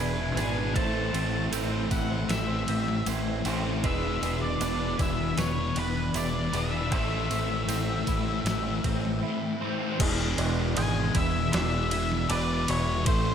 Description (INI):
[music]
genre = rock, shoegaze and dream pop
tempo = 78 BPM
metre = 4/4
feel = straight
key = E mixolydian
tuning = A4 = 440 Hz
[part]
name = octave-fuzz lead guitar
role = melody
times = 0.0-13.3 s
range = B4 to A5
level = -33 LUFS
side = left 3 dB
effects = distortion, slapback echo
[part]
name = direct-recorded clean electric guitar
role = arpeggios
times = 0.0-13.3 s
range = G#3 to B4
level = -37 LUFS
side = right 8 dB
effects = ensemble chorus, slapback echo
[part]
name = biting overdriven guitar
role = riff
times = 0.0-10.0 s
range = A2 to C5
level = -33 LUFS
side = equal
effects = none
[part]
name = overdriven semi-hollow guitar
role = riff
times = 0.0-13.3 s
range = A2 to C5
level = -35 LUFS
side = right 10 dB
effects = reverse reverb
[part]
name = thick fuzz guitar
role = riff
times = 0.0-13.3 s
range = E2 to A3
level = -33 LUFS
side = left 9 dB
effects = distortion, lush chorus
[part]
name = growling fingered electric bass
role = bass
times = 0.0-13.3 s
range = E1 to A1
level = -31 LUFS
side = equal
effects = overdrive
[part]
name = tambourine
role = percussion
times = 0.0-8.6 s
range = none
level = -42 LUFS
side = right 11 dB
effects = none
[part]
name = detuned 8-bit digital drum machine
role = drums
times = 0.4-13.2 s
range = crash cymbal, kick drum, ride cymbal, snare drum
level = -33 LUFS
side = equal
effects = none
[sound]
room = light reverb, digital ambience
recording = none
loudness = -25 LUFS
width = side -8 dB against mid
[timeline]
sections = 0.0-10.0 A section; 10.0-13.3 B section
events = none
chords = 0.0 E7; 0.8 Am; 3.8 E7; 6.9 Am; 10.0 E7